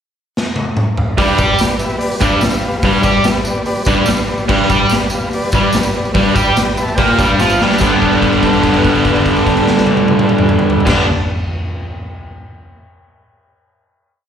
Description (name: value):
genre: garage rock duo or trio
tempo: 145 BPM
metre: 4/4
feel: straight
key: G mixolydian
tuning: A4 = 440 Hz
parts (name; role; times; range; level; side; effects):
- raw garage drum kit; drums; 0.4-11.0 s; crash cymbal, hi-hat, kick drum, snare drum, toms; -17 LUFS; equal; none
- combo organ; sustained chords; 1.2-11.0 s; G4 to B5; -21 LUFS; left 1 dB; none
- overdriven electric guitar; riff; 1.2-11.1 s; G2 to G4; -12 LUFS; equal; slapback echo
- tambourine; percussion; 1.2-8.0 s; none; -29 LUFS; right 1 dB; none
room: little or no reverb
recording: live gig heard through the venue's PA, recital hall reverb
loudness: -11 LUFS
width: side -8 dB against mid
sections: 0.0-1.2 pickup bar; 1.2-7.8 riff; 7.8-11.1 final chord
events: drum fill 0.4-1.2, 7.4-7.8; transistor combo organ fill 6.6-7.8; held note 7.8-10.9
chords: 0.0 N.C.; 1.2 G